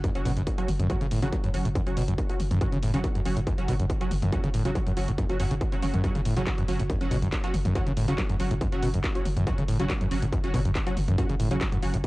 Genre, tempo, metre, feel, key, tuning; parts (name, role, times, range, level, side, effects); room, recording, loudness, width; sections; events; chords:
driving peak-time techno; 140 BPM; 4/4; straight; F# minor; A4 = 440 Hz
overdriven acid bass; riff; 0.0-12.1 s; F#2 to F#3; -28 LUFS; equal; distortion, wide subtle chorus, sidechain pumping, tape echo
growling 808-style bass; bass; 0.0-12.0 s; F#1; -31 LUFS; equal; overdrive, sidechain pumping, low-pass filter
electronic kick drum; drums; 0.0-12.1 s; -29 LUFS; equal; distortion
techno drum kit; drums; 0.0-12.1 s; handclaps, hi-hat, toms; -37 LUFS; equal; sidechain pumping on hats, sidechain pumping on toms, sidechain pumping on cymbals
rave stab; stabs; 0.2-11.9 s; F#3 to F#4; -33 LUFS; right 1 dB; chorus, built-in reverb, sidechain pumping, tape echo
digital ambience; dry, gritty hardware recording; -24 LUFS; side -20 dB against mid
0.0-12.1 A section
0.0 F#5